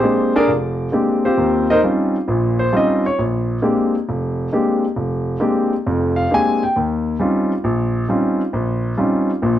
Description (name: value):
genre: solo jazz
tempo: 134 BPM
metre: 4/4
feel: swing 67% on 8ths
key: Bb mixolydian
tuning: A4 = 440 Hz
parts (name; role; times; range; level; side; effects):
- warm grand piano; solo; 0.0-9.6 s; F1 to Ab5; -16 LUFS; equal; none
room: moderate studio reverb, RT60 0.9 s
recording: none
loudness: -16 LUFS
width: side -12 dB against mid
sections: 0.0-9.6 A section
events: grand piano solo 0.0-9.6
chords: 0.0 Bb13; 1.4 Eb13; 3.2 Bb13; 6.8 Eb13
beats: 0.05 0.49 0.94 | 1.39 1.84 2.28 2.73 | 3.18 3.62 4.07 4.52 | 4.97 5.41 5.86 6.31 | 6.75 7.20 7.65 8.09 | 8.54 8.98 9.43